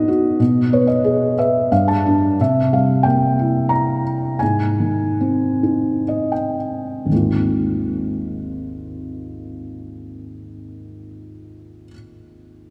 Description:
classical, lyrical solo piano; 53-94 BPM; 3/4; rubato; Ab major; A4 = 440 Hz
felt-muted upright piano; solo; 0.0-12.7 s; Ab1 to Bb5; -19 LUFS; equal
wet church reverb, RT60 3.1 s; recorded in a church or concert hall; -18 LUFS; mono
0.0-2.4 A section; 2.4-7.1 B section; 7.1-12.7 C section
felt piano fill 0.4-2.4, 5.6-7.1; slowing down 2.4-7.1
0.4 B69; 1.7 G5; 2.4 C7; 4.4 Ab; 7.1 Ab6

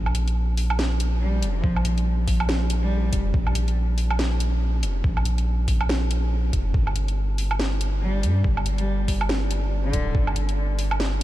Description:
deep dubstep; 141 BPM; 4/4; swing 60% on 16ths, half-time; A4 = 440 Hz
soft dub sub bass; bass; 0.0-11.2 s; D1 to G2; -23 LUFS; equal
garage drum kit; drums; 0.1-11.1 s; hi-hat, snare drum, woodblock; -29 LUFS; right 1 dB; studio reverb
warm cello; melody; 1.2-3.1, 8.0-10.3 s; D3 to G3; -32 LUFS; left 1 dB; dub echo
electronic kick drum; drums; 1.6-10.2 s; -24 LUFS; equal; studio reverb
light reverb; -21 LUFS; side -15 dB against mid
0.0-11.2 A section
0.0 Bb5; 6.7 G5

